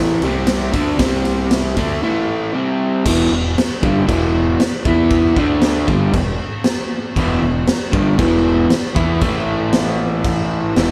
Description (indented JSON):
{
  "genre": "garage rock duo or trio",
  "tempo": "117 BPM",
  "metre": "4/4",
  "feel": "straight",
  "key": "unclear",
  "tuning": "A4 = 441 Hz",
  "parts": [
    { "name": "crunchy overdriven guitar", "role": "riff", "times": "0.0-10.9 s", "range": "E2 to E4", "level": "-19 LUFS", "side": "equal", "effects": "none" },
    { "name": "fuzz fingered electric bass", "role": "bass", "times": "0.0-10.9 s", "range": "E1 to E2", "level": "-25 LUFS", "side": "equal", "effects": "overdrive" },
    { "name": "raw garage drum kit", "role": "drums", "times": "0.2-10.9 s", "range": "crash cymbal, kick drum, ride cymbal, snare drum", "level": "-22 LUFS", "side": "equal", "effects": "none" }
  ],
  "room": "moderate large studio reverb, RT60 1.4 s",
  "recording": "band playing live in one room",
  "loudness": "-17 LUFS",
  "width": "mono",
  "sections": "0.0-3.1 A section; 3.1-10.9 B section",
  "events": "none",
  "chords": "0.2 C5; 0.7 D5; 1.0 C5; 1.8 A5; 2.5 C5; 3.1 E5; 5.4 D5; 5.9 E5; 9.2 A5"
}